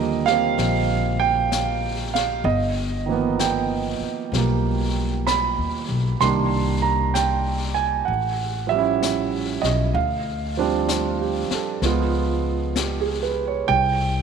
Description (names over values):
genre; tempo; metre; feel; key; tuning
jazz ballad; 64 BPM; 4/4; swing 66% on 8ths; C minor; A4 = 440 Hz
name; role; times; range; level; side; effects
warm grand piano; accompaniment; 0.0-14.2 s; D3 to C6; -22 LUFS; right 8 dB; none
upright bass; bass; 0.0-14.2 s; G1 to Eb2; -25 LUFS; left 2 dB; none
vintage brush drum kit; drums; 0.3-14.2 s; brushed snare drum, hi-hat, snare drum; -31 LUFS; left 8 dB; none
room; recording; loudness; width
moderate echo chamber reverb, RT60 2.6 s; 1960s-style stereo with parts hard left and right; -20 LUFS; side -6 dB against mid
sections
0.0-14.2 A section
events
none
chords
0.0 Ebmaj9; 2.4 G7alt; 6.2 Cm9; 8.1 A7b13; 10.0 Dm7; 11.8 Db7; 13.7 C5